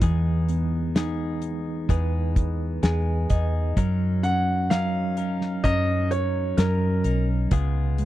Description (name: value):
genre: pop ballad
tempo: 64 BPM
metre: 4/4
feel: straight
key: F# major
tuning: A4 = 438 Hz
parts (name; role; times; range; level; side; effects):
- mellow tine electric piano; accompaniment; 0.0-8.1 s; C#3 to G#5; -27 LUFS; right 1 dB; fast stereo tremolo
- direct-recorded clean electric guitar; arpeggios; 0.0-8.1 s; C#3 to A#4; -34 LUFS; left 11 dB; none
- vintage muted fingered electric bass; bass; 0.0-8.1 s; B1 to F#2; -25 LUFS; equal; none
- damped 70s drum kit; drums; 0.0-8.1 s; hi-hat, kick drum, snare drum; -23 LUFS; equal; none
- warm concert grand piano; melody; 4.2-7.2 s; A#4 to F#5; -27 LUFS; right 1 dB; none
room: little or no reverb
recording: dry, close 1970s-style studio recording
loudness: -21 LUFS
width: side -14 dB against mid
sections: 0.0-8.1 A section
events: tine electric piano fill 2.4-3.8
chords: 0.0 Emaj7; 3.8 F#6; 7.5 C#7